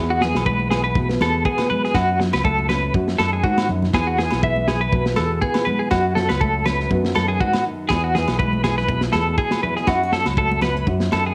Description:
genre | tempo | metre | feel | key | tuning
highlife guitar band | 121 BPM | 4/4 | swing 54% on 16ths | E major | A4 = 440 Hz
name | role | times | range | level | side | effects
flamenco guitar | accompaniment | 0.0-11.3 s | E2 to G#4 | -28 LUFS | equal | none
fingered electric bass | bass | 0.0-11.3 s | B1 to G#2 | -26 LUFS | equal | none
clean electric guitar | arpeggios | 0.1-11.3 s | F#4 to E5 | -24 LUFS | equal | tremolo, slapback echo
crunchy breakbeat drum kit | drums | 0.2-11.2 s | kick drum, snare drum | -26 LUFS | equal | none
congas | percussion | 0.2-11.2 s | none | -33 LUFS | equal | none
agogo bells | percussion | 0.4-11.2 s | none | -34 LUFS | equal | none
room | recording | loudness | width
light reverb, studio reverb | none | -20 LUFS | mono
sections
0.0-11.3 A section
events
drum fill 3.4-3.9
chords
0.0 E; 1.9 F#m; 2.9 F#m69; 3.9 E; 5.9 F#m; 6.9 Badd9/F#; 7.9 E; 9.9 F#m

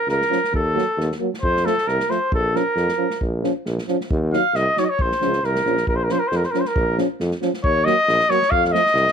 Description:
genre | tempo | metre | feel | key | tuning
balkan folk, Balkan brass band | 135 BPM | 2/4 | straight | Bb harmonic minor | A4 = 441 Hz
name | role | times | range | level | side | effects
mellow trumpet | melody | 0.0-9.1 s | A4 to F5 | -19 LUFS | equal | none
warm tuba | bass | 0.1-9.1 s | Bb1 to F2 | -24 LUFS | equal | none
unplugged drum kit | percussion | 0.1-9.1 s | kick drum, snare drum | -28 LUFS | equal | none
mellow euphonium | accompaniment | 0.3-8.8 s | A3 to Eb4 | -27 LUFS | left 16 dB | none
mellow euphonium | accompaniment | 0.3-8.8 s | F3 to Gb3 | -27 LUFS | right 16 dB | none
room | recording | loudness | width
small room ambience | 1960s-style stereo with parts hard left and right | -18 LUFS | side -7 dB against mid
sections
0.0-9.1 A section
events
trumpet solo 0.0-9.1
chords
0.0 Bbm; 0.5 Ebm; 1.4 F; 2.3 Bbm; 4.1 Ebm; 5.0 Bbm; 7.6 Ebm; 8.5 F

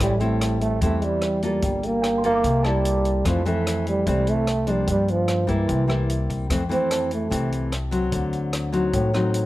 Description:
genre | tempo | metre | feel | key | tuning
bossa nova | 148 BPM | 4/4 | straight | F major | A4 = 440 Hz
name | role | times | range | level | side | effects
breathy trombone | melody | 0.0-7.5 s | E3 to C4 | -23 LUFS | right 2 dB | plate reverb
nylon-string guitar | accompaniment | 0.0-9.5 s | F2 to A4 | -25 LUFS | left 2 dB | none
warm baby grand piano | accompaniment | 0.0-3.4, 6.9-8.1 s | G5 to D6 | -35 LUFS | equal | none
upright bass | bass | 0.0-9.5 s | G1 to G2 | -26 LUFS | equal | none
compact cocktail drum kit | drums | 0.0-9.4 s | hi-hat, kick drum, rim click | -30 LUFS | equal | none
room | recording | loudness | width
light reverb | none | -20 LUFS | side -16 dB against mid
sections
0.0-6.5 A section; 6.5-9.5 B section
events
trombone solo 6.5-9.5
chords
0.0 Am7; 1.6 Gm9; 2.4 C13; 3.2 Fmaj7; 4.9 Gm7; 5.7 C7; 6.5 Fmaj7; 8.1 D7b9

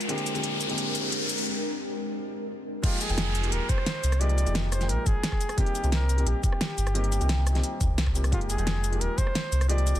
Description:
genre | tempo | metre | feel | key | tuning
liquid drum and bass | 175 BPM | 4/4 | straight | F dorian | A4 = 445 Hz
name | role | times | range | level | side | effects
ethereal airy pad | sustained chords | 0.0-2.8 s | Ab3 to Bb4 | -33 LUFS | left 1 dB | ensemble chorus, built-in reverb, sidechain pumping
pop drum kit | drums | 0.0-10.0 s | crash cymbal, hi-hat, rim click, shaker, snare drum | -32 LUFS | equal | none
riser and downlifter | sound effects | 0.0-5.6 s | none | -32 LUFS | left 1 dB | none
felt-muted upright piano | accompaniment | 0.1-10.0 s | D3 to G5 | -34 LUFS | left 1 dB | ping-pong delay
breathy flugelhorn | melody | 2.8-10.0 s | F4 to D5 | -33 LUFS | equal | ping-pong delay
electronic kick drum | drums | 2.8-9.2 s | none | -26 LUFS | equal | none
sub bass with octave | bass | 3.1-10.0 s | Eb1 to Eb2 | -25 LUFS | equal | none
room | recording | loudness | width
light reverb | dense, heavily limited modern master | -24 LUFS | side -12 dB against mid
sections
0.0-2.8 A section; 2.8-10.0 B section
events
build-up 0.0-2.8; riser 0.0-1.5; break 1.5-2.8; drop 2.8-10.0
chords
0.0 Bb13; 2.8 Fm11; 5.6 Cm7; 8.3 Fm11

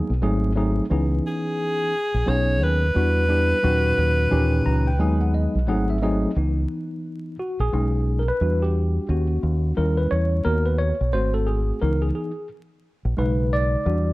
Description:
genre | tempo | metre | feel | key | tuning
hip hop | 88 BPM | 4/4 | swing 61% on 16ths | unclear | A4 = 440 Hz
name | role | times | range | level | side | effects
tine electric piano | accompaniment | 0.0-14.1 s | A#2 to A#5 | -24 LUFS | equal | medium stereo tremolo
deep dub fingered electric bass | bass | 0.1-14.1 s | G#1 to E2 | -22 LUFS | equal | none
clear alto saxophone | melody | 1.3-5.7 s | G#4 to C#5 | -24 LUFS | equal | none
room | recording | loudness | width
light reverb, studio ambience | vinyl crackle | -19 LUFS | side -19 dB against mid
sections
0.0-6.4 A section; 6.4-14.1 B section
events
tine electric piano fill 4.3-6.4; tine electric piano solo 6.4-14.1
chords
0.2 G#7b9; 0.9 C#m9; 2.3 B6; 3.0 Em7; 3.6 D#m7; 4.3 D#7b9; 5.0 G#m7/D#; 5.7 G#7b9; 6.4 C#m9; 7.7 B6; 8.4 Em7; 9.1 D#m7; 9.8 D#7b9; 10.5 Bmaj9; 11.1 G#7b9; 11.8 C#m9; 13.2 B6

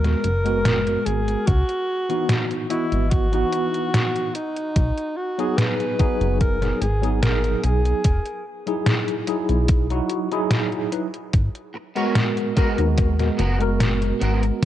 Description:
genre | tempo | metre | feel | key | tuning
vaporwave | 73 BPM | 4/4 | straight | unclear | A4 = 440 Hz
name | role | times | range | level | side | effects
breathy alto saxophone | melody | 0.0-8.5 s | D#4 to B4 | -26 LUFS | equal | tape echo
tine electric piano | accompaniment | 0.0-14.6 s | E3 to D#5 | -24 LUFS | equal | medium stereo tremolo, wide subtle chorus, vintage 12-bit sampler grit, tape echo
chorused synth bass | bass | 0.0-14.7 s | E1 to D#2 | -22 LUFS | equal | tube saturation
detuned 8-bit digital drum machine | drums | 0.0-14.7 s | hi-hat, snare drum | -23 LUFS | equal | overdrive, vintage 12-bit sampler grit, gated reverb
electronic kick drum | drums | 1.5-14.7 s | none | -20 LUFS | equal | overdrive, vintage 12-bit sampler grit
electric guitar at the edge of break-up | riff | 11.7-14.4 s | B3 to C#5 | -29 LUFS | right 2 dB | ensemble chorus, tape echo
room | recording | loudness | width
digital ambience | cassette tape | -19 LUFS | side -12 dB against mid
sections
0.0-14.7 A section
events
none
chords
0.0 G#m9; 1.5 C#m11 (rootless); 4.4 B6; 8.1 Emaj9; 11.3 G#m9

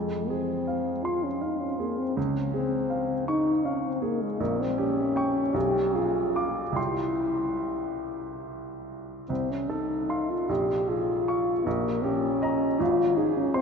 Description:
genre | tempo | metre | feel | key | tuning
classical, romantic duo for French horn and grand piano | 46-55 BPM (dotted quarters) | 6/8 | rubato | F minor | A4 = 440 Hz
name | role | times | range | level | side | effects
dark French horn | melody | 0.0-13.6 s | Ab3 to G4 | -26 LUFS | left 2 dB | none
clear grand piano | accompaniment | 0.0-13.6 s | Ab1 to D6 | -30 LUFS | right 2 dB | none
room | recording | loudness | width
wet cathedral reverb, RT60 6.1 s | in a vast, echoing space, nothing above 7.6 kHz | -25 LUFS | side -5 dB against mid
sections
0.0-13.6 A section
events
none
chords
0.0 Fm; 2.2 Dbmaj7; 4.4 Gdim/Bb; 5.6 Bdim7; 6.8 C; 9.3 F7/C; 10.5 Bbm7; 11.7 Eb7/Bb; 12.8 Ab

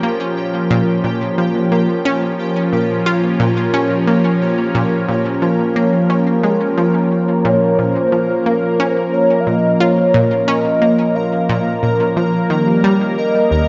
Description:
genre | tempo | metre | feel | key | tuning
ambient, sequencer-driven space music | 89 BPM | 4/4 | straight | unclear | A4 = 440 Hz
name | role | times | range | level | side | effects
lush unison pad | sustained chords | 0.0-13.7 s | F3 to Bb4 | -18 LUFS | equal | chorus
analog pluck | riff | 0.0-13.7 s | Eb2 to F4 | -21 LUFS | equal | chorus, tape echo
pulsing gated texture | texture | 0.0-13.7 s | G4 to Bb5 | -30 LUFS | equal | chorus, built-in reverb
mellow horn-like synth lead | melody | 7.5-13.7 s | Bb4 to F5 | -20 LUFS | equal | analog chorus, tape echo
room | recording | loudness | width
wet scoring stage reverb, RT60 2.0 s | nothing above 7.6 kHz | -16 LUFS | mono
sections
0.0-13.7 A section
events
none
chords
0.0 Bbm; 12.5 Eb

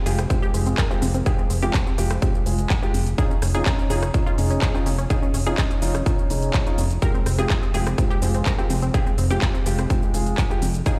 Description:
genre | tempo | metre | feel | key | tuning
progressive house | 125 BPM | 4/4 | straight | F minor | A4 = 440 Hz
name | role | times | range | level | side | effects
dark grand piano | stabs | 0.0-11.0 s | Ab3 to Ab4 | -30 LUFS | equal | sidechain pumping, dub echo
unison pluck | arpeggios | 0.1-10.9 s | C4 to Bb4 | -33 LUFS | equal | sidechain pumping, dub echo
fat analog bass | bass | 0.1-10.8 s | F1 | -25 LUFS | equal | sidechain pumping
big-room dance drum kit | drums | 0.1-11.0 s | handclaps, hi-hat, shaker | -33 LUFS | equal | small room ambience, sidechain pumping on hats, sidechain pumping on cymbals, sidechain pumping on perc
electronic rim click, congas and cowbell | percussion | 0.2-11.0 s | none | -35 LUFS | equal | none
electronic kick drum | drums | 0.3-11.0 s | none | -24 LUFS | equal | overdrive, small room ambience
room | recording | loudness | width
digital ambience | played on a big sound system in a bare room, large studio reverb | -22 LUFS | mono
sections
0.0-11.0 A section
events
none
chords
0.0 Fmadd9; 3.2 Dbadd9/F; 7.0 Fmadd9

